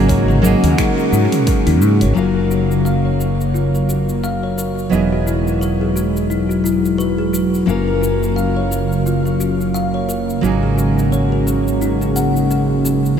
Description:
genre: sunset chillout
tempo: 87 BPM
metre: 4/4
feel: swing 58% on 16ths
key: Gb major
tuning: A4 = 442 Hz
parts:
  - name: nylon-string guitar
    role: accompaniment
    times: 0.0-13.2 s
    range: E3 to F5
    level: -21 LUFS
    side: moving between left 7 dB and right 5 dB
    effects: auto-pan, analog delay
  - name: lush unison pad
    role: sustained chords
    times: 0.0-13.2 s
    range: Db3 to F5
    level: -18 LUFS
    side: equal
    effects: chorus
  - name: mellow fretless electric bass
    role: bass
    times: 0.0-13.2 s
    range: E1 to Ab2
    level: -20 LUFS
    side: equal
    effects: none
  - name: kalimba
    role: arpeggios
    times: 0.1-13.0 s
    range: Eb4 to Gb5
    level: -23 LUFS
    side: left 3 dB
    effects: low-pass filter, analog delay
  - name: deep house drum kit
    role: drums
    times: 0.1-13.2 s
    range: finger snaps, hi-hat, shaker, toms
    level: -27 LUFS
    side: equal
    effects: studio reverb
  - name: electronic kick drum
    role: drums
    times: 0.1-1.6 s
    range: none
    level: -19 LUFS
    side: equal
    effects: studio reverb
room: moderate huge ambient reverb, RT60 7.7 s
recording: dreamy mix soaked in reverb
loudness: -14 LUFS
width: side -8 dB against mid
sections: 0.0-2.2 A section; 2.2-13.2 B section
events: none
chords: 0.0 Ab9sus4; 2.2 Gbmaj7; 4.9 Emaj9; 7.7 Gbmaj7; 10.4 Ab9sus4

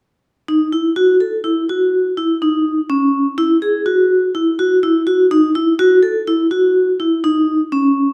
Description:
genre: contemporary instrumental, contemporary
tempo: 124 BPM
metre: 5/4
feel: straight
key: F# dorian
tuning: A4 = 440 Hz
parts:
  - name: vibraphone with medium hard mallets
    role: arpeggios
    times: 0.5-8.1 s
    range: C#4 to A4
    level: -15 LUFS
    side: equal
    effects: none
room: moderate recital hall reverb, RT60 1.4 s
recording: none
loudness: -15 LUFS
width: mono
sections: 0.5-8.1 A section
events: none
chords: none

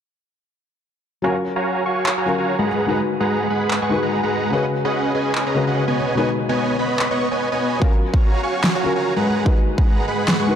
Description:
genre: future bass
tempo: 146 BPM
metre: 4/4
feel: swing 56% on 16ths, half-time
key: F# major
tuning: A4 = 440 Hz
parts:
  - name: felt-muted upright piano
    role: accompaniment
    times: 1.2-10.6 s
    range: B2 to B4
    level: -24 LUFS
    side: left 3 dB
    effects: sidechain pumping, dub echo
  - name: dense compressed supersaw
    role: riff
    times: 1.2-10.6 s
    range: G#3 to C#6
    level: -20 LUFS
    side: right 1 dB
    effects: sidechain pumping, low-pass filter, dub echo
  - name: electronic handclaps and snare drum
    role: drums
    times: 2.1-10.4 s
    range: none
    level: -24 LUFS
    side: equal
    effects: overdrive
  - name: electronic kick drum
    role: drums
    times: 7.8-9.9 s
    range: none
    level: -16 LUFS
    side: equal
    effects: overdrive
room: moderate huge ambient reverb, RT60 4.4 s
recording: dark, warm production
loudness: -17 LUFS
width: side -8 dB against mid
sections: 1.2-10.6 A section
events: none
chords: 1.2 F#maj7; 2.7 G#m7; 4.5 C#7sus4; 6.0 B6; 7.8 F#maj7; 9.3 G#m7

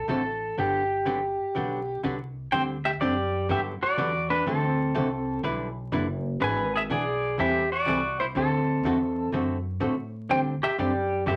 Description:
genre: country, western swing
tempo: 124 BPM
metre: 4/4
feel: swing 67% on 8ths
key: unclear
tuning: A4 = 440 Hz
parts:
  - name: pedal steel guitar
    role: melody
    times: 0.0-11.4 s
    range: C4 to G#5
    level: -28 LUFS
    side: equal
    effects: none
  - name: archtop guitar, miked and amplified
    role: accompaniment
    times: 0.1-11.4 s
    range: D3 to B4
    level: -31 LUFS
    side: equal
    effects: none
  - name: upright bass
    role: bass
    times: 0.1-11.4 s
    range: F#1 to A2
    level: -35 LUFS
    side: equal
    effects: none
room: wet studio ambience, RT60 0.5 s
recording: vinyl crackle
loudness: -27 LUFS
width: mono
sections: 0.0-2.5 A section; 2.5-11.4 B section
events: none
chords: 0.0 D7; 0.6 Gmaj7; 2.5 D7sus4; 3.5 Gmaj7; 4.5 D7; 5.4 G6; 6.4 E7; 7.4 Am7/E; 8.4 D7; 10.3 D7sus4

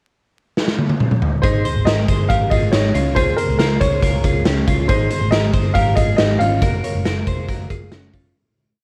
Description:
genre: jangly indie pop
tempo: 139 BPM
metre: 4/4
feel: straight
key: Ab major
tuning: A4 = 440 Hz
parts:
  - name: raw garage drum kit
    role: drums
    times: 0.6-8.2 s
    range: hi-hat, kick drum, snare drum, toms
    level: -21 LUFS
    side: equal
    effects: none
  - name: warm upright piano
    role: melody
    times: 1.4-7.9 s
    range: Bb4 to F5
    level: -24 LUFS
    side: equal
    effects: plate reverb
  - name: twelve-string electric guitar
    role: arpeggios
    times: 1.4-8.4 s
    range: Db4 to Db5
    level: -26 LUFS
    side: equal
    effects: spring reverb, plate reverb
  - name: vintage muted picked electric bass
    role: bass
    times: 1.4-8.3 s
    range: F1 to Db2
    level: -23 LUFS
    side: equal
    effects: none
room: light reverb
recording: worn, warbling old tape, cassette tape, vinyl crackle, warbly pitch drift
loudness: -17 LUFS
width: mono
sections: 0.0-1.4 pickup bar; 1.4-8.4 verse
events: drum fill 0.6-1.4; fade-out 6.6-8.4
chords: 0.0 N.C.; 1.4 Abmaj7; 2.9 Db6; 4.9 Abmaj7; 6.6 Gbmaj7

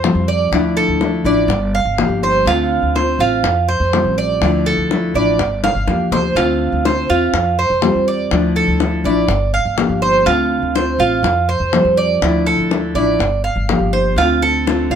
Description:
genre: latin, Cuban son and guajira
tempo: 123 BPM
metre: 4/4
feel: straight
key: D minor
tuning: A4 = 440 Hz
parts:
  - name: nylon-string guitar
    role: accompaniment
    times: 0.0-15.0 s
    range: D3 to G4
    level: -18 LUFS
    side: left 3 dB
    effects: none
  - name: Cuban tres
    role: arpeggios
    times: 0.0-15.0 s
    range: F4 to F5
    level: -17 LUFS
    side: right 4 dB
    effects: none
  - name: upright bass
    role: bass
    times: 0.0-15.0 s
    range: G1 to F2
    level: -21 LUFS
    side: equal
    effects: none
  - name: bongos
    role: percussion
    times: 0.0-15.0 s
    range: none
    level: -21 LUFS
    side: left 7 dB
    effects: none
room: moderate studio reverb, RT60 0.5 s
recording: none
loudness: -13 LUFS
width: side -8 dB against mid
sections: 0.0-14.2 A section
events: drum fill 5.6-6.4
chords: 0.0 Fsus2; 0.5 Dmadd9; 1.5 Gm7; 2.5 Dm7; 3.4 Fsus2; 4.4 Dmadd9; 5.4 Gm7; 6.4 Dm7; 7.3 Fsus2; 8.3 Dmadd9; 9.3 Gm7; 10.3 Dm7; 11.2 Fsus2; 12.2 Dmadd9; 13.2 Gm7; 14.2 Dm7

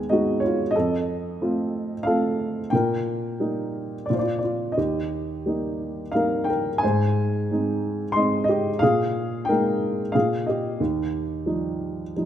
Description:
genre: classical, lyrical solo piano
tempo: 90 BPM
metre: 3/4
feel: rubato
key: Eb major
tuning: A4 = 440 Hz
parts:
  - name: dark baby grand piano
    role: solo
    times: 0.0-12.3 s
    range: D#2 to C6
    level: -22 LUFS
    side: equal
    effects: none
room: moderate scoring stage reverb, RT60 1.5 s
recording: none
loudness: -22 LUFS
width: side -10 dB against mid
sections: 0.0-12.3 A section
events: none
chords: 0.0 B6/D#; 0.8 F; 2.7 Eb/Bb; 4.1 Bb; 4.8 Eb; 6.8 Ab; 8.8 Bb7sus4; 10.8 Ebadd9

